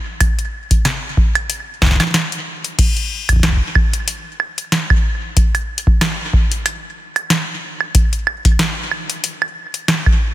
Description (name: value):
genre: IDM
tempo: 93 BPM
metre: 4/4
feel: swing 56% on 16ths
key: none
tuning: none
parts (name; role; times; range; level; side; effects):
- electro analog drum machine; drums; 0.2-10.2 s; crash cymbal, hi-hat, snare drum, woodblock; -18 LUFS; right 1 dB; small room ambience, digital delay
- electronic kick drum; drums; 0.2-10.2 s; none; -14 LUFS; equal; small room ambience
room: little or no reverb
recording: dense, heavily limited modern master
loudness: -15 LUFS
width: side -14 dB against mid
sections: 0.0-10.3 A section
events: none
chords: none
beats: | 0.20 0.85 1.50 2.14 | 2.79 3.43 4.08 4.72 | 5.37 6.01 6.66 7.30 | 7.95 8.59 9.24 9.88